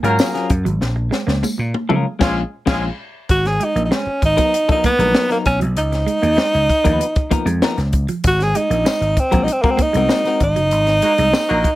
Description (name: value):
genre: funk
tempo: 97 BPM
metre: 4/4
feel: straight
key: unclear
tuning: A4 = 439 Hz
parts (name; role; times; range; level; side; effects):
- warm horn section; second line; 0.0-2.8, 11.0-11.7 s; Ab3 to Bb4; -21 LUFS; equal; none
- clean electric guitar; accompaniment; 0.0-10.4 s; F3 to Cb5; -22 LUFS; left 6 dB; none
- semi-hollow electric guitar; riff; 0.0-11.5 s; F3 to Bb3; -25 LUFS; right 6 dB; none
- vintage slap bass; bass; 0.0-11.6 s; Gb1 to Db3; -20 LUFS; equal; none
- compact cocktail drum kit; drums; 0.0-11.8 s; crash cymbal, hi-hat, kick drum, snare drum, toms; -20 LUFS; equal; none
- tambourine; percussion; 0.2-1.6, 8.9-11.5 s; none; -33 LUFS; left 4 dB; none
- breathy tenor saxophone; melody; 3.3-11.8 s; Bb3 to Ab4; -17 LUFS; right 1 dB; none
room: light reverb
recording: none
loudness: -15 LUFS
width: side -16 dB against mid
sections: 0.0-3.3 A section; 3.3-11.8 B section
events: drum fill 0.8-3.3; band accent 2.1-3.3, 10.7-11.8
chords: 0.0 Ebm11 (rootless); 0.8 Bbm7; 3.3 Abm9; 5.8 Db13; 8.2 Ab9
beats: 0.20 | 0.82 1.44 2.06 2.68 | 3.30 3.92 4.53 5.15 | 5.77 6.39 7.01 7.63 | 8.24 8.86 9.48 10.10 | 10.72 11.34